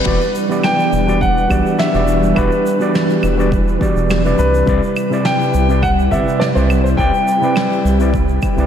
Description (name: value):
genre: sunset chillout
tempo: 104 BPM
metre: 4/4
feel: straight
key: E minor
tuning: A4 = 443 Hz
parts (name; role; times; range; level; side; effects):
- dark baby grand piano; melody; 0.0-8.7 s; B4 to G5; -19 LUFS; left 1 dB; diffuse ambient delay
- overdriven tine electric piano; accompaniment; 0.0-8.7 s; C3 to D5; -19 LUFS; equal; auto-pan, diffuse ambient delay
- soft string machine; sustained chords; 0.0-8.7 s; C3 to B4; -19 LUFS; equal; ensemble chorus
- round analog bass; bass; 0.1-8.7 s; E1 to C2; -17 LUFS; equal; none
- electronic kick drum; drums; 0.1-8.5 s; none; -20 LUFS; equal; none
- shaker, claves and snare drum; drums; 0.1-8.7 s; none; -24 LUFS; right 1 dB; none
room: wet lush hall reverb, RT60 2.1 s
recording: dreamy mix soaked in reverb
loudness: -12 LUFS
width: side -9 dB against mid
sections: 0.0-8.7 A section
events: none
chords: 0.1 Em7; 4.4 Cmaj7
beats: | 0.06 0.64 1.22 1.79 | 2.37 2.95 3.52 4.10 | 4.68 5.25 5.83 6.41 | 6.98 7.56 8.14